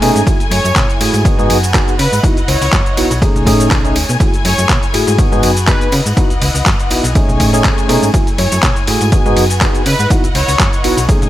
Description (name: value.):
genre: filtered disco house.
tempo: 122 BPM.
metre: 4/4.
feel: swing 54% on 16ths.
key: F# dorian.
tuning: A4 = 438 Hz.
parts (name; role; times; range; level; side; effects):
tine electric piano; accompaniment; 0.0-11.3 s; A3 to G#4; -16 LUFS; equal; phaser, sidechain pumping.
dark studio string section; sustained chords; 0.0-11.3 s; A3 to G#5; -22 LUFS; left 3 dB; sidechain pumping.
slap-like FM bass; bass; 0.0-11.3 s; B1 to C#3; -16 LUFS; equal; tube saturation, sidechain pumping.
dusty soul sampler-style drum kit; drums; 0.0-11.3 s; handclaps, hi-hat, ride cymbal, shaker; -18 LUFS; equal; sidechain pumping on hats, sidechain pumping on perc, sidechain pumping on cymbals.
tambourine; percussion; 0.0-11.2 s; none; -28 LUFS; right 3 dB; sidechain pumping on perc.
electronic kick drum; drums; 0.3-11.2 s; none; -14 LUFS; equal; none.
analog synth brass; melody; 0.5-11.0 s; B4 to C#5; -21 LUFS; equal; chorus, sidechain pumping, tape echo.
room: little or no reverb.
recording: none.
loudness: -10 LUFS.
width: side -14 dB against mid.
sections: 0.0-11.3 A section.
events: none.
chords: 0.3 F#m9; 1.3 G#m7; 2.0 C#m11; 3.2 B13; 4.2 F#m9; 5.2 G#m7; 5.9 C#m11; 7.2 B13; 8.1 F#m9; 9.1 G#m7; 9.9 C#m11.